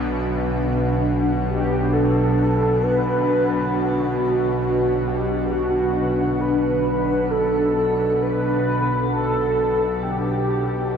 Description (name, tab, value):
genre	dark ambient drone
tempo	free time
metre	none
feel	none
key	B minor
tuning	A4 = 440 Hz
part	granular cloud pad	sustained chords	0.0-11.0 s	D4 to F#5	-24 LUFS	equal	built-in reverb, shimmer reverb
part	bowed-like drone	drone	0.0-11.0 s	B1 to B2	-23 LUFS	equal	built-in reverb
part	mellow horn-like synth lead	melody	1.5-11.0 s	F#4 to B4	-22 LUFS	equal	ensemble chorus, shimmer reverb, ping-pong delay
room	wet cathedral reverb, RT60 5.4 s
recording	none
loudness	-18 LUFS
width	side -7 dB against mid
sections	0.1-11.0 A section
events	none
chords	0.1 Bm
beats	free time